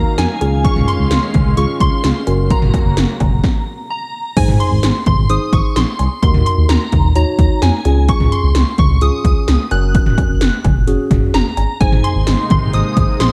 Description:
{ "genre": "synth-pop", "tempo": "129 BPM", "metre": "4/4", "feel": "straight", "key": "unclear", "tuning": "A4 = 440 Hz", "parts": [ { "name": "shimmering bell with halo", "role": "melody", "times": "0.0-13.3 s", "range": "Ab5 to Gb6", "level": "-24 LUFS", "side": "equal", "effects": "ensemble chorus" }, { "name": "mellow tine electric piano", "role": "accompaniment", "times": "0.0-13.3 s", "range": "Db4 to Db5", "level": "-24 LUFS", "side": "equal", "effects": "phaser" }, { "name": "warm analog pad", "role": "sustained chords", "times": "0.0-3.4, 11.8-13.3 s", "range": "C3 to F5", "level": "-28 LUFS", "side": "equal", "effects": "chorus" }, { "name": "smooth gliding synth bass", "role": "bass", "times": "0.0-13.3 s", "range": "Gb1 to F2", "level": "-18 LUFS", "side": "equal", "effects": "none" }, { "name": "80s electronic pad drums", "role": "drums", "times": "0.2-13.3 s", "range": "cowbell, crash cymbal, hi-hat, kick drum, snare drum, toms", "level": "-18 LUFS", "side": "equal", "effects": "gated reverb on snare and toms, overdrive" } ], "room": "light reverb, digital ambience", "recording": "dark, warm production", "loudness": "-14 LUFS", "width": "mono", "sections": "0.0-4.4 A section; 4.4-13.3 A section", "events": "stop 3.4-4.4", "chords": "0.4 Dbadd9; 2.3 Gb; 4.4 Ab; 6.2 Ebm; 7.9 Dbadd9; 9.7 Gb; 11.8 Abadd9" }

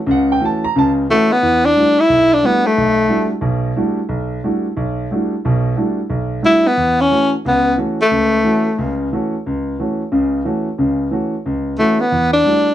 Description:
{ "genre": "jazz", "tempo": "180 BPM", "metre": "4/4", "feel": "swing 62% on 8ths", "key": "E dorian", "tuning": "A4 = 440 Hz", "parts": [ { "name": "warm grand piano", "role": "accompaniment", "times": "0.1-12.7 s", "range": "B1 to A#5", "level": "-17 LUFS", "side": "right 1 dB", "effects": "none" }, { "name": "warm tenor saxophone", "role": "melody", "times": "1.1-3.3, 6.5-9.0, 11.8-12.7 s", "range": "A3 to E4", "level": "-12 LUFS", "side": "left 1 dB", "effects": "none" } ], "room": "moderate studio reverb, RT60 0.6 s", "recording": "dark, warm production", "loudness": "-14 LUFS", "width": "side -12 dB against mid", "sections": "0.0-1.4 A section; 1.4-12.7 B section", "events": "none", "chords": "0.0 F#m; 1.4 Em11; 6.8 F#m; 12.1 Em11" }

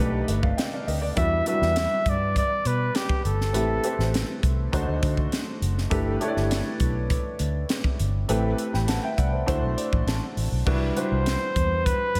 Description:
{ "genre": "polished 1980s jazz-funk pop", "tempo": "101 BPM", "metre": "4/4", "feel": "straight", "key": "G major", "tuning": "A4 = 440 Hz", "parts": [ { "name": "warm grand piano", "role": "accompaniment", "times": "0.0-12.2 s", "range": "F#3 to B5", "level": "-31 LUFS", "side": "equal", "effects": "lush chorus, slapback echo" }, { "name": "vintage muted fingered electric bass", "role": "bass", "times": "0.0-12.2 s", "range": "F#1 to D3", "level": "-28 LUFS", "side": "equal", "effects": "none" }, { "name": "crisp fusion drum kit", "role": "drums", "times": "0.3-12.2 s", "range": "crash cymbal, hi-hat, kick drum, snare drum", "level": "-30 LUFS", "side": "equal", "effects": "none" }, { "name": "warm flugelhorn", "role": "melody", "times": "1.2-4.4, 11.0-12.2 s", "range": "G4 to E5", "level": "-28 LUFS", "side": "equal", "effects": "slapback echo" } ], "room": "moderate recital hall reverb, RT60 1.9 s", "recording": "big arena sound", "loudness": "-25 LUFS", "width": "mono", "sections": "0.0-10.7 A section; 10.7-12.2 B section", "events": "grand piano fill 9.5-10.7", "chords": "0.0 B7alt; 1.2 Em9; 3.5 Am7; 4.7 D7b9; 5.9 G6; 8.3 Am7; 9.5 D7; 10.7 Cmaj9#11" }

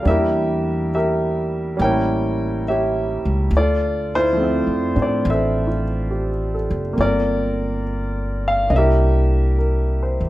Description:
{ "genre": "jazz ballad", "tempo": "69 BPM", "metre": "4/4", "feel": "swing 69% on 8ths", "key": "unclear", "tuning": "A4 = 435 Hz", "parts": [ { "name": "warm concert grand piano", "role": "accompaniment", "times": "0.0-10.3 s", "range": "F3 to G5", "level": "-20 LUFS", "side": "equal", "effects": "none" }, { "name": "upright bass", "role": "bass", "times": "0.1-10.3 s", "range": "Gb1 to A2", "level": "-21 LUFS", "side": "equal", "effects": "none" } ], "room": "light reverb", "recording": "none", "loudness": "-17 LUFS", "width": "side -16 dB against mid", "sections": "0.0-10.3 A section", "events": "none", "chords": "0.1 Em7b5; 1.8 A7b9; 3.5 Dm9; 7.0 Gm7; 8.7 C9" }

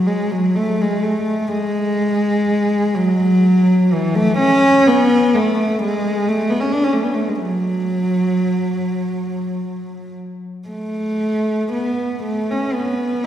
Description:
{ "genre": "classical, free, expressive piece for unaccompanied cello", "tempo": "32-43 BPM (dotted quarters)", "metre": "6/8", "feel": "rubato", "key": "unclear", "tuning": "A4 = 435 Hz", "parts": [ { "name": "warm cello", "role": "solo", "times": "0.0-13.3 s", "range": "E3 to D4", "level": "-16 LUFS", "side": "equal", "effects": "none" } ], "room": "wet concert hall reverb, RT60 2.3 s", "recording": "heard from further back in the room", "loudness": "-15 LUFS", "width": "side -11 dB against mid", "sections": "0.0-13.3 A section", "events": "none", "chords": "none" }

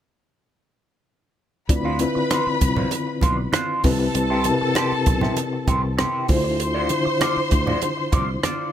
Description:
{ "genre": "lush 1970s-style soul", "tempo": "98 BPM", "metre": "4/4", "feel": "straight", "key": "D dorian", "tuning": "A4 = 439 Hz", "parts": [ { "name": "warm studio string section", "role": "second line", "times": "1.7-8.7 s", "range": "A4 to C6", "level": "-26 LUFS", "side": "left 1 dB", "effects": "none" }, { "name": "mellow reed electric piano", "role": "accompaniment", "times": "1.7-8.7 s", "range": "C3 to D5", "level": "-24 LUFS", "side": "left 3 dB", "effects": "fast tremolo" }, { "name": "electric guitar through a small old amp", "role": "riff", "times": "1.7-8.7 s", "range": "D4 to D5", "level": "-27 LUFS", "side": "right 2 dB", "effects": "wah, warbly pitch drift" }, { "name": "fingered electric bass", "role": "bass", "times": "1.7-8.4 s", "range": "B1 to D2", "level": "-26 LUFS", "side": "equal", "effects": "none" }, { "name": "compact cocktail drum kit", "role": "drums", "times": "1.7-8.6 s", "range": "hi-hat, kick drum, rim click", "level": "-22 LUFS", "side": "right 1 dB", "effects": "none" }, { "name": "congas", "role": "percussion", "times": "2.0-8.6 s", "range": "none", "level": "-30 LUFS", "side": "right 4 dB", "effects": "none" } ], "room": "light reverb, studio ambience", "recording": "none", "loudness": "-19 LUFS", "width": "side -10 dB against mid", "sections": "1.7-8.7 A section", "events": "none", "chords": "1.7 Dm7; 3.8 Am7; 6.3 Dm7" }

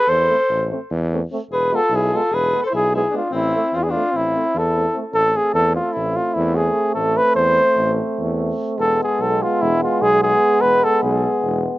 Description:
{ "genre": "balkan folk", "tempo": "296 BPM (eighths)", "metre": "9/8", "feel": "straight", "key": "A harmonic minor", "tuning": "A4 = 441 Hz", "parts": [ { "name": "dark cornet", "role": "melody", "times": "0.0-11.6 s", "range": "E4 to C5", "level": "-17 LUFS", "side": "equal", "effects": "slapback echo" }, { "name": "warm alto saxophone", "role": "second line", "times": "0.0-5.0 s", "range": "C4 to A4", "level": "-26 LUFS", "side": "left 4 dB", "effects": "slapback echo" }, { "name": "clear tuba", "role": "bass", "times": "0.1-11.7 s", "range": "E1 to E2", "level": "-24 LUFS", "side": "equal", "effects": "none" }, { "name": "clear euphonium", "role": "accompaniment", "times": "0.3-11.8 s", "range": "G#3 to A3", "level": "-26 LUFS", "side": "right 4 dB", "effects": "slapback echo" }, { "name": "warm euphonium", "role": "accompaniment", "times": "0.3-11.8 s", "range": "B3 to C4", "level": "-27 LUFS", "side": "left 4 dB", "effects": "slapback echo" } ], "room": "little or no reverb", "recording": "recorded outdoors, with no room sound, nothing above 7.5 kHz", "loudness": "-16 LUFS", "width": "side -17 dB against mid", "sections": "0.0-5.1 A section; 5.1-11.8 A section", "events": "none", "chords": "0.0 Am; 1.5 E; 3.3 Am; 8.8 E" }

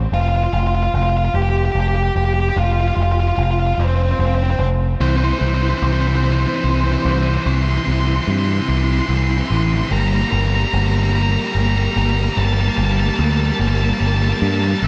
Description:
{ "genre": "post-rock", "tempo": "49 BPM (dotted quarters)", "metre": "6/8", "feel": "straight", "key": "G dorian", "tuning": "A4 = 438 Hz", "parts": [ { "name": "growling picked electric bass", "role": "bass", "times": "0.0-14.9 s", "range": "F1 to G2", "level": "-19 LUFS", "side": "equal", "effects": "overdrive" }, { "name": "octave-fuzz lead guitar", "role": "melody", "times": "0.1-14.9 s", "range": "C4 to C6", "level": "-24 LUFS", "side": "equal", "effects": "distortion, diffuse ambient delay" }, { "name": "biting overdriven guitar", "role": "riff", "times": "5.0-14.9 s", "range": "A2 to Bb3", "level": "-23 LUFS", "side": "equal", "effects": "none" } ], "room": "light reverb", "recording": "faint mains hum", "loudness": "-18 LUFS", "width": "mono", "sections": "0.0-5.0 A section; 5.0-14.9 B section", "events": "build-up 5.0-14.9", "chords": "0.1 Fsus2; 5.0 C; 9.9 Gmadd9" }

